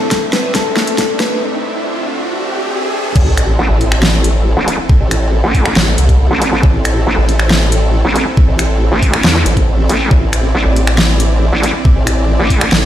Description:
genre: heavy wobble dubstep.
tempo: 138 BPM.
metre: 4/4.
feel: half-time.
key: A minor.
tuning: A4 = 440 Hz.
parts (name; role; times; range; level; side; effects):
mellow electric guitar; melody; 0.0-1.4 s; A4 to B4; -19 LUFS; left 3 dB; vintage 12-bit sampler grit, tape echo.
supersaw pad; sustained chords; 0.0-12.9 s; A2 to E5; -20 LUFS; right 1 dB; sidechain pumping.
riser and sub drop; sound effects; 0.0-4.9 s; none; -20 LUFS; equal; none.
dubstep drum kit; drums; 0.1-12.8 s; crash cymbal, finger snaps, hi-hat, snare drum; -16 LUFS; equal; overdrive.
electronic kick drum; drums; 0.1-12.6 s; none; -11 LUFS; equal; none.
formant-sweep wobble bass; bass; 3.2-12.9 s; A1 to C2; -13 LUFS; equal; chorus, overdrive.
vowel-sweep wobble bass; bass; 3.6-12.7 s; A1 to E2; -13 LUFS; equal; chorus, overdrive.
room: light reverb.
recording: played on a big sound system in a bare room, stone room reverb, high-pass filter, lossy compression artefacts.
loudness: -10 LUFS.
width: side -12 dB against mid.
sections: 0.0-3.2 A section; 3.2-12.9 B section.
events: build-up 0.0-3.2; drum fill 0.0-1.4; riser 0.0-3.2; filter sweep on clean electric guitar 0.0-3.2; break 1.4-3.2; drop 3.2-12.9; impact 3.2-4.9.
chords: 0.0 Am.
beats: 0.11 0.55 0.98 | 1.42 1.85 2.29 2.72 | 3.16 3.59 4.03 4.46 | 4.89 5.33 5.76 6.20 | 6.63 7.07 7.50 7.94 | 8.37 8.81 9.24 9.68 | 10.11 10.55 10.98 11.42 | 11.85 12.29 12.72.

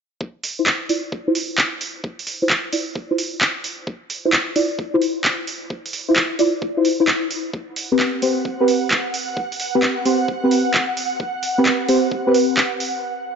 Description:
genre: UK garage, two-step garage.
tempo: 131 BPM.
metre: 4/4.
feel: swing 67% on 16ths.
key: unclear.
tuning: A4 = 437 Hz.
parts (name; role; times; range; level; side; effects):
electronic kick drum; drums; 0.2-12.7 s; none; -29 LUFS; equal; overdrive, high-pass filter on kick, small room ambience.
garage drum kit; drums; 0.4-12.9 s; handclaps, hi-hat; -21 LUFS; right 1 dB; overdrive, small room ambience.
deep mellow chord stab; stabs; 0.6-12.4 s; C4 to D5; -19 LUFS; equal; chorus, vintage 12-bit sampler grit, dub echo.
ethereal airy pad; sustained chords; 8.2-13.4 s; F#5; -26 LUFS; equal; ensemble chorus, built-in reverb, sidechain pumping.
room: moderate lush hall reverb, RT60 2.1 s.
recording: dark, warm production, nothing above 7.6 kHz.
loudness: -18 LUFS.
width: side -6 dB against mid.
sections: 0.2-13.4 A section.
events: filter sweep on synth stab 0.2-13.4; break 13.0-13.4.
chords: 0.2 Dm7; 7.3 Gmaj7.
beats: | 0.21 0.67 1.12 1.58 | 2.04 2.50 2.96 3.41 | 3.87 4.33 4.79 5.25 | 5.70 6.16 6.62 7.08 | 7.54 7.99 8.45 8.91 | 9.37 9.83 10.28 10.74 | 11.20 11.66 12.12 12.57 | 13.03.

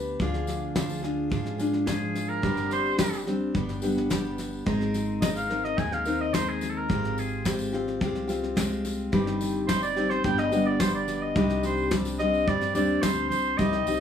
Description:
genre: acoustic folk duo or small band.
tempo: 108 BPM.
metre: 4/4.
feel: straight.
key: C minor.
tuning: A4 = 440 Hz.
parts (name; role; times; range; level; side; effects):
picked steel-string acoustic guitar; accompaniment; 0.0-14.0 s; G2 to B4; -27 LUFS; left 1 dB; none.
upright bass; bass; 0.0-14.0 s; G1 to Ab2; -33 LUFS; equal; none.
soft brush drum kit; drums; 0.2-13.9 s; kick drum, snare drum; -31 LUFS; left 1 dB; none.
tambourine; percussion; 0.2-14.0 s; none; -43 LUFS; left 4 dB; none.
clear oboe; second line; 1.9-14.0 s; Ab4 to Ab5; -28 LUFS; right 1 dB; none.
room: light reverb.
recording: small room ambience.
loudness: -24 LUFS.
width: side -8 dB against mid.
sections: 0.0-13.6 A section.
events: oboe solo 0.0-13.6.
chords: 0.2 Ddim; 2.4 Gsus4; 3.5 G; 4.7 Abadd9; 6.9 Fmadd9/Ab; 9.1 Cm/G; 10.2 G; 11.4 Cmadd9.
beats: | 0.20 0.76 1.31 1.87 | 2.43 2.99 3.55 4.11 | 4.66 5.22 5.78 6.34 | 6.90 7.45 8.01 8.57 | 9.13 9.69 10.24 10.80 | 11.36 11.92 12.47 13.03 | 13.59.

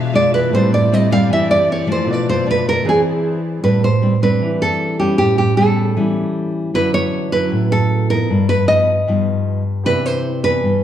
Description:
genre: bossa nova.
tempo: 154 BPM.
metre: 4/4.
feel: straight.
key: A minor.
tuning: A4 = 441 Hz.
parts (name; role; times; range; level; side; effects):
nylon-string guitar; accompaniment; 0.0-10.8 s; G2 to G#4; -17 LUFS; equal; none.
warm concert grand piano; accompaniment; 0.0-3.6, 9.8-10.8 s; E3 to B5; -27 LUFS; right 2 dB; none.
dark symphonic string section; sustained chords; 0.0-3.6 s; B3 to F5; -29 LUFS; left 1 dB; none.
nylon-string guitar; melody; 0.2-10.8 s; G4 to F5; -17 LUFS; right 1 dB; none.
room: wet large studio reverb, RT60 1.2 s.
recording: heard from further back in the room.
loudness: -14 LUFS.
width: side -10 dB against mid.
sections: 0.0-3.6 A section; 3.6-10.8 B section.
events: nylon-string guitar solo 0.0-3.6.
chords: 0.0 E7b9; 0.5 Am11; 2.1 Bm7b5; 2.8 E7b13; 3.6 Am11; 5.2 A9; 6.7 Dmaj9; 8.3 Gaug7; 9.9 Cmaj9.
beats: 0.13 | 0.52 0.90 1.29 1.68 | 2.07 2.46 2.85 3.24 | 3.63 4.01 4.40 4.79 | 5.18 5.57 5.96 6.35 | 6.74 7.13 7.52 7.91 | 8.30 8.69 9.07 9.46 | 9.85 10.24 10.63.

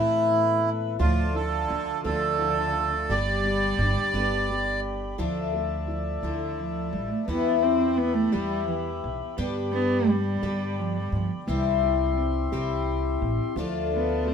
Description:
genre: acoustic folk duo or small band.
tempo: 57 BPM (dotted quarters).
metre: 6/8.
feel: straight.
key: D dorian.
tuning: A4 = 443 Hz.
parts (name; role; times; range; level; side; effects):
accordion; melody; 0.0-4.8 s; E4 to D5; -25 LUFS; right 3 dB; none.
dark cello; second line; 0.0-14.3 s; A2 to C4; -29 LUFS; right 2 dB; none.
picked twelve-string acoustic guitar; accompaniment; 0.0-14.3 s; E2 to G4; -30 LUFS; left 9 dB; none.
pedal harmonium; sustained chords; 0.0-14.3 s; F4 to C6; -36 LUFS; right 3 dB; none.
felt-muted upright piano; arpeggios; 0.0-14.3 s; E3 to G4; -33 LUFS; equal; none.
upright bass; bass; 0.0-14.3 s; G1 to A2; -30 LUFS; equal; none.
room: light reverb.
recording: minimal, uncompressed stereo recording.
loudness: -23 LUFS.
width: side -7 dB against mid.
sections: 0.0-5.2 A section; 5.2-14.3 B section.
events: cello solo 5.2-14.3.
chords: 0.0 Amadd9; 1.0 Dm; 3.1 G; 5.2 Dmadd9; 7.3 Em; 9.4 G; 11.5 C; 13.6 Dm.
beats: | 0.99 2.04 | 3.09 4.14 | 5.18 6.23 | 7.28 8.33 | 9.37 10.42 | 11.47 12.52 | 13.57.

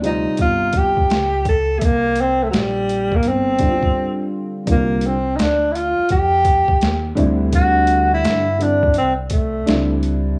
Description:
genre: hip hop, jazz-hop.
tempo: 84 BPM.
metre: 4/4.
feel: swing 65% on 16ths.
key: unclear.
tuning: A4 = 440 Hz.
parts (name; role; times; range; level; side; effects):
dark upright piano; accompaniment; 0.0-10.4 s; C3 to F4; -24 LUFS; equal; cassette tape.
upright bass; bass; 0.0-10.4 s; G1 to G2; -25 LUFS; equal; none.
boom bap sampler-style drum kit; drums; 0.0-10.2 s; hi-hat, kick drum, snare drum; -22 LUFS; equal; overdrive, cassette tape.
breathy tenor saxophone; melody; 0.1-10.0 s; F#3 to A4; -20 LUFS; equal; cassette tape.
room: light reverb, small room ambience.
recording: home recording on cassette.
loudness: -17 LUFS.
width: mono.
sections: 0.0-4.7 A section; 4.7-10.4 B section.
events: break 4.0-4.7.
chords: 0.0 C9sus4; 4.7 Csus24; 7.2 D9sus4.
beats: 0.39 1.10 | 1.82 2.53 3.25 3.96 | 4.67 5.39 6.10 6.82 | 7.53 8.24 8.96 9.67 | 10.39.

